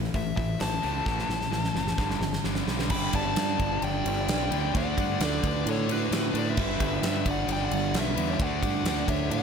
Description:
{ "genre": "hard rock", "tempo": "131 BPM", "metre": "4/4", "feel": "straight", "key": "unclear", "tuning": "A4 = 440 Hz", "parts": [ { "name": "overdriven semi-hollow guitar", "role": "riff", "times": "0.0-9.4 s", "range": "G2 to D4", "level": "-32 LUFS", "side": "right 14 dB", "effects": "none" }, { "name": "tight distorted guitar", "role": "riff", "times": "0.0-9.4 s", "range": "G2 to D4", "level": "-33 LUFS", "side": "left 12 dB", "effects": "distortion" }, { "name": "growling fingered electric bass", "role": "bass", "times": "0.0-9.4 s", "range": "F#1 to A2", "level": "-32 LUFS", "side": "equal", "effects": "overdrive" }, { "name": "huge arena drum kit", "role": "drums", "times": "0.0-9.4 s", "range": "crash cymbal, hi-hat, kick drum, ride cymbal, snare drum", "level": "-30 LUFS", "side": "equal", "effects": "none" }, { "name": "nasal lead guitar with a parked wah", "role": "melody", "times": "0.2-9.4 s", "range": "B4 to B5", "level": "-32 LUFS", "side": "left 4 dB", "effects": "overdrive, slapback echo" }, { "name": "dark smooth lead guitar", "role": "second line", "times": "2.9-9.4 s", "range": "F#4 to G5", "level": "-36 LUFS", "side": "right 5 dB", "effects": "overdrive" } ], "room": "light reverb", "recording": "none", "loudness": "-25 LUFS", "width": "side -6 dB against mid", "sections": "0.0-2.9 A section; 2.9-9.4 B section", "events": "drum fill 1.1-2.9", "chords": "0.0 A5; 2.0 G; 4.7 D; 6.6 G; 8.4 D" }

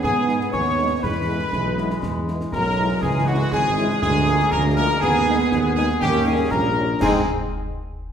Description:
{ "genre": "military-style march for wind band", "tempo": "120 BPM", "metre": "2/4", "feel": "straight", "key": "G# minor", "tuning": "A4 = 439 Hz", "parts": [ { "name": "mellow trumpet section", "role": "melody", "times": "0.0-7.2 s", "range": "F#4 to C#5", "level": "-25 LUFS", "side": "equal", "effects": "none" }, { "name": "bright woodwind section", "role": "second line", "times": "0.0-7.2 s", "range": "B#3 to C#5", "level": "-29 LUFS", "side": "left 2 dB", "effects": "none" }, { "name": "hollow small flute group", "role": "second line", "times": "0.0-7.3 s", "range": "F#5 to C#6", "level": "-26 LUFS", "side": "left 2 dB", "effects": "none" }, { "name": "mellow euphonium", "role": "second line", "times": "0.0-6.8 s", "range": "E3 to B3", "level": "-27 LUFS", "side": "right 3 dB", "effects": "none" }, { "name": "clear trombone section", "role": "sustained chords", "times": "0.0-7.2 s", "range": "D#3 to C#4", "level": "-29 LUFS", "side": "right 2 dB", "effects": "none" }, { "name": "dark tuba", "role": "bass", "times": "0.0-7.2 s", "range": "G#1 to G#2", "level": "-23 LUFS", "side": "right 1 dB", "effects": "none" }, { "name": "concert snare drum, concert bass drum and clash cymbals", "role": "drums", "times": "0.0-7.3 s", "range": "none", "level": "-30 LUFS", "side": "equal", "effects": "none" }, { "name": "dark French horn section", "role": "accompaniment", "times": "0.3-7.2 s", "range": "G3 to E#4", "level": "-30 LUFS", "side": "left 3 dB", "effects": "none" } ], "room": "wet recital hall reverb, RT60 1.5 s", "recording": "recorded in a church or concert hall", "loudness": "-18 LUFS", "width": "side -8 dB against mid", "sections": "0.0-7.0 A section", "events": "none", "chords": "0.0 G#m; 1.0 E; 3.0 C#m; 4.0 A#7/D; 5.0 G#m/D#; 6.0 D#7; 7.0 G#" }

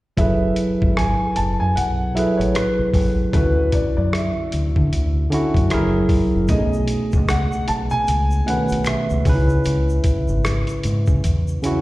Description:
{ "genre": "R&B, neo-soul", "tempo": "76 BPM", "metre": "4/4", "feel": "swing 59% on 16ths", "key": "F# minor", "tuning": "A4 = 440 Hz", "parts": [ { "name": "dark concert grand piano", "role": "melody", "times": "0.2-11.8 s", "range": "B4 to A5", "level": "-25 LUFS", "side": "equal", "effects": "slapback echo, tape echo" }, { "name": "barky tine electric piano", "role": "accompaniment", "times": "0.2-11.8 s", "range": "B2 to B4", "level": "-21 LUFS", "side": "right 1 dB", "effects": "overdrive" }, { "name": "deep dub fingered electric bass", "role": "bass", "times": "0.2-11.6 s", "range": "F#1 to D3", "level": "-21 LUFS", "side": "equal", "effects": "none" }, { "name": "boom bap sampler-style drum kit", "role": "drums", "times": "0.2-11.8 s", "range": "hi-hat, kick drum, rim click", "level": "-21 LUFS", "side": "equal", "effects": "none" }, { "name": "tube shaker and finger snaps", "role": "percussion", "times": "6.5-11.8 s", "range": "none", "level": "-40 LUFS", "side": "left 3 dB", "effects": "slapback echo" } ], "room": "light reverb, small room ambience", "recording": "live gig heard through the venue's PA, recital hall reverb", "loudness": "-17 LUFS", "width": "side -18 dB against mid", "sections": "0.2-11.8 A section", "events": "none", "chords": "0.2 F#m11; 3.3 Dmaj9; 5.7 F#9; 6.5 B13; 9.3 C#m7" }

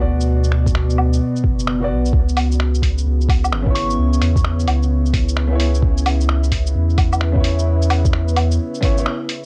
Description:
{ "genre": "future garage", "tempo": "130 BPM", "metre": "4/4", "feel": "swing 64% on 16ths", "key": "unclear", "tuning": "A4 = 440 Hz", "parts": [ { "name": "bright upright piano", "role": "accompaniment", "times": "0.0-9.1 s", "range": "B2 to D5", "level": "-29 LUFS", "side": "equal", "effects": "sidechain pumping, cassette tape, analog delay, plate reverb" }, { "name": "warbly tape-like pad", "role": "sustained chords", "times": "0.1-9.5 s", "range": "B2 to D5", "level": "-26 LUFS", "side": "equal", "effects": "chorus, built-in reverb, sidechain pumping, cassette tape" }, { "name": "soft dub sub bass", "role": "bass", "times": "0.0-9.1 s", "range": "F#1 to E2", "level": "-20 LUFS", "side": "equal", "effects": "sidechain pumping" }, { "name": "lo-fi sampler-style drum kit", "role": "drums", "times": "0.2-9.4 s", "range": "finger snaps, hi-hat, shaker, woodblock", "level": "-27 LUFS", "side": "equal", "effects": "small room ambience" }, { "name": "electronic kick drum", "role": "drums", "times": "0.7-8.9 s", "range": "none", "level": "-20 LUFS", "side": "equal", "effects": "small room ambience" }, { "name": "soft synth bell", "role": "melody", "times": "3.7-4.4 s", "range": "C#6", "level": "-29 LUFS", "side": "equal", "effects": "chorus, phaser, cassette tape, analog delay" } ], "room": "light reverb", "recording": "home recording on cassette", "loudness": "-17 LUFS", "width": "mono", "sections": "0.0-9.5 A section", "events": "break 9.1-9.5; band accent 9.1", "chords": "0.0 Bm; 2.1 C#m7" }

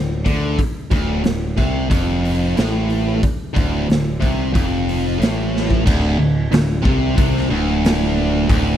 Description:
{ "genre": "blues rock power trio and southern rock", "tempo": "91 BPM", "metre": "4/4", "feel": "straight", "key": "unclear", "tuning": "A4 = 439 Hz", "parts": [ { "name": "tight distorted guitar", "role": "riff", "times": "0.0-8.8 s", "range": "D2 to D3", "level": "-19 LUFS", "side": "equal", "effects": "distortion" }, { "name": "growling picked electric bass", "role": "bass", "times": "0.0-8.8 s", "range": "D1 to D2", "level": "-21 LUFS", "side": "equal", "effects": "overdrive" }, { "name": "raw garage drum kit", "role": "drums", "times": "0.3-8.7 s", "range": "crash cymbal, hi-hat, kick drum, snare drum", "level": "-20 LUFS", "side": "equal", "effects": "none" } ], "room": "studio reverb", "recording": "none", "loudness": "-15 LUFS", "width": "side -10 dB against mid", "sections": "0.0-5.9 A section; 5.9-8.8 B section", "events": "drum fill 5.5-5.9", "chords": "0.0 D5; 5.9 D7(no3)" }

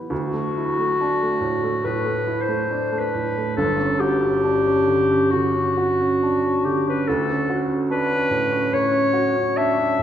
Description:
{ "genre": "classical, impressionist duo for clarinet and grand piano", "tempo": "63-73 BPM", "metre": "4/4", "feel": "rubato", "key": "D major", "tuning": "A4 = 439 Hz", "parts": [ { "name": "warm baby grand piano", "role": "accompaniment", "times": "0.0-10.0 s", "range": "G1 to G4", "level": "-22 LUFS", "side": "right 2 dB", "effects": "none" }, { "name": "warm clarinet", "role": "melody", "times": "0.1-10.0 s", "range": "F#4 to E5", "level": "-21 LUFS", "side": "left 2 dB", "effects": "none" } ], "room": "wet scoring stage reverb, RT60 2.1 s", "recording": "heard from further back in the room", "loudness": "-18 LUFS", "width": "side -10 dB against mid", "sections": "0.1-10.0 A section", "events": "none", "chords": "0.1 Dadd9; 3.6 G5; 7.1 Dmaj7" }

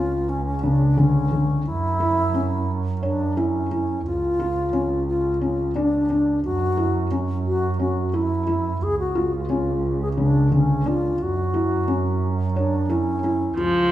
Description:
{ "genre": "contemporary instrumental, contemporary", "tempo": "176 BPM (eighths)", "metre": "7/8", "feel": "straight", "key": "unclear", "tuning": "A4 = 440 Hz", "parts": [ { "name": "bright reedy wooden-headed alto flute", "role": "melody", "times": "0.0-13.9 s", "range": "C#4 to G#4", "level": "-24 LUFS", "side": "left 1 dB", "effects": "none" }, { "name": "felt-muted upright piano", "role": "arpeggios", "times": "0.0-13.9 s", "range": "C#3 to C#5", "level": "-23 LUFS", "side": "left 1 dB", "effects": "none" }, { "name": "muted double bass", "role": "bass", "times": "0.0-13.9 s", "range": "C#2 to F#2", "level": "-25 LUFS", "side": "right 3 dB", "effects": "none" }, { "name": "rich viola", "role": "second line", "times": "13.6-13.9 s", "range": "E#3", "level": "-21 LUFS", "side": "right 2 dB", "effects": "none" } ], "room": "wet recital hall reverb, RT60 1.6 s", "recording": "heard from further back in the room", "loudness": "-20 LUFS", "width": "side -13 dB against mid", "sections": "0.0-13.6 A section", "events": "none", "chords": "0.0 N.C.; 1.7 F#5; 4.1 C#; 6.4 F#5; 8.8 C#; 11.2 F#5" }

